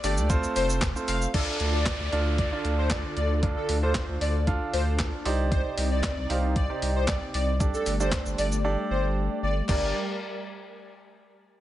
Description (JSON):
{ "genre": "dance-pop", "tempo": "115 BPM", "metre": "4/4", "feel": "straight", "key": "unclear", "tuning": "A4 = 441 Hz", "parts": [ { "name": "airy dreamy lead", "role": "melody", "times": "0.0-9.9 s", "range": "A4 to F5", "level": "-32 LUFS", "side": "left 2 dB", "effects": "chorus, sidechain pumping, digital delay" }, { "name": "clear concert grand piano", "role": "accompaniment", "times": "0.0-9.9 s", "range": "A3 to F5", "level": "-31 LUFS", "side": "right 4 dB", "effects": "sidechain pumping" }, { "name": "saturated sub bass", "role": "bass", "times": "0.0-9.9 s", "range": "F1 to D2", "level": "-27 LUFS", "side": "equal", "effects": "sidechain pumping" }, { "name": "clean 12-bit digital drum machine", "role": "drums", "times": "0.0-9.8 s", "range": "crash cymbal, handclaps, hi-hat, kick drum, shaker, snare drum", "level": "-30 LUFS", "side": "equal", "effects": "none" }, { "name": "group handclap", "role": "percussion", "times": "0.8-0.9, 6.0-9.9 s", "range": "none", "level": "barely audible", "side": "none", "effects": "none" }, { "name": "warm analog pad", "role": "sustained chords", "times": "1.3-9.9 s", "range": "C3 to D5", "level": "-35 LUFS", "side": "equal", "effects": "chorus, sidechain pumping" }, { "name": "downlifter", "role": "sound effects", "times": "1.3-5.5 s", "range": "none", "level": "-37 LUFS", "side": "equal", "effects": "none" } ], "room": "digital ambience", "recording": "nothing above 10.9 kHz", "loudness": "-24 LUFS", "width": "side -13 dB against mid", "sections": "0.0-1.3 A section; 1.3-9.7 B section; 9.7-11.6 C section", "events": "drop 0.0-1.3; silent gap 8.6-9.7", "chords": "0.3 F; 1.3 Dm; 5.3 Cmadd9; 7.6 Gsus2; 9.7 Gm" }